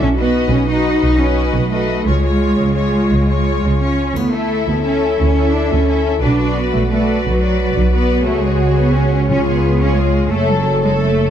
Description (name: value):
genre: cinematic, heroic adventure film score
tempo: 116 BPM (dotted quarters)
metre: 12/8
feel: straight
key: unclear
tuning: A4 = 439 Hz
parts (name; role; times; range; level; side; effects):
- mellow French horn section; sustained chords; 0.0-11.3 s; D#4 to C#5; -22 LUFS; left 5 dB; none
- rich symphonic cello section; bass; 0.0-11.3 s; F#3 to D#4; -18 LUFS; right 1 dB; none
- rich symphonic double bass section; bass; 0.0-11.3 s; F#1 to D2; -17 LUFS; right 2 dB; none
- warm symphonic violin section; melody; 0.2-11.3 s; C#5 to E5; -26 LUFS; left 5 dB; none
- clear symphonic violin section; second line; 0.2-11.3 s; G#4 to C#5; -24 LUFS; left 4 dB; none
- clear symphonic viola section; accompaniment; 0.2-11.3 s; E4 to A4; -25 LUFS; right 1 dB; none
- triangle; percussion; 4.2-4.8 s; none; -41 LUFS; left 6 dB; none
- timpani; percussion; 9.3-9.8 s; C#3; -25 LUFS; left 2 dB; none
room: light reverb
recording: dark, warm production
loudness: -13 LUFS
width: side -9 dB against mid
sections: 0.0-11.3 A section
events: none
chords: 0.0 B; 2.1 C#; 4.2 Dsus2; 6.2 Bm; 8.3 C#sus4; 9.3 C#; 10.3 F#m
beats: | 0.01 0.52 1.03 1.54 | 2.06 2.58 3.11 3.63 | 4.15 4.67 5.19 5.71 | 6.23 6.74 7.25 7.76 | 8.27 8.78 9.29 9.80 | 10.31 10.84